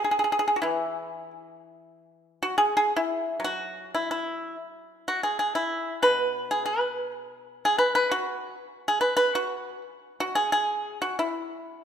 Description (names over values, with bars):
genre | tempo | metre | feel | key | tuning
chinese traditional, Chinese solo plucked strings | 93 BPM | 4/4 | uneven beats, rubato | E gong mode | A4 = 440 Hz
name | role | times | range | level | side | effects
pipa | solo | 0.0-11.8 s | B2 to B4 | -24 LUFS | equal | none
room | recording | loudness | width
moderate concert hall reverb, RT60 2.2 s | minimal, uncompressed stereo recording | -24 LUFS | side -8 dB against mid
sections
0.0-11.8 A section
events
none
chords
none